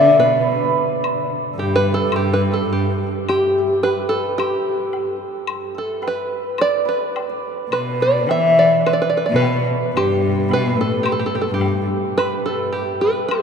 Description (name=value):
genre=chinese traditional, Chinese chamber ensemble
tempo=103-112 BPM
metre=2/4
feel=rubato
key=G gong mode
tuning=A4 = 438 Hz
part: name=open-back banjo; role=melody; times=0.0-13.4 s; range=G4 to E5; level=-20 LUFS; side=right 1 dB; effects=none
part: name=clear cello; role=second line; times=0.0-3.1, 7.7-11.9 s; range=G2 to E3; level=-22 LUFS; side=left 1 dB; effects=none
part: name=hammered dulcimer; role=second line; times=0.0-13.4 s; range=G4 to G5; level=-21 LUFS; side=equal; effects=none
part: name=woodblock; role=percussion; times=1.0-13.4 s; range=none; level=-32 LUFS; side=left 7 dB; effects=none
room=wet cathedral reverb, RT60 6.1 s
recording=in a vast, echoing space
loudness=-16 LUFS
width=side -6 dB against mid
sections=0.0-3.3 A section; 3.3-12.2 B section; 12.2-13.4 A section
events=none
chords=none